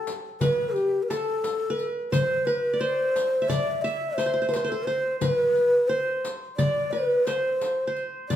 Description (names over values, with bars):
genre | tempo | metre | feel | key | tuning
Turkish makam ensemble | 175 BPM (eighths) | 9/8 | straight | unclear | A4 = 438 Hz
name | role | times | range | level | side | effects
breathy mellow ney | melody | 0.0-8.4 s | G4 to E5 | -24 LUFS | equal | none
qanun | second line | 0.0-8.4 s | G4 to E5 | -30 LUFS | equal | none
darbuka | percussion | 0.1-8.4 s | none | -30 LUFS | left 1 dB | none
riq | percussion | 0.1-8.4 s | none | -37 LUFS | left 5 dB | none
room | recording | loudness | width
wet large studio reverb, RT60 1.1 s | band playing live in one room | -22 LUFS | side -11 dB against mid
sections
0.0-8.4 A section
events
none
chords
none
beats
0.07 0.41 0.76 1.10 1.44 1.78 | 2.13 2.47 2.81 3.15 3.50 3.84 4.18 4.53 4.87 | 5.21 5.56 5.90 6.24 6.59 6.93 7.27 7.62 7.96 | 8.30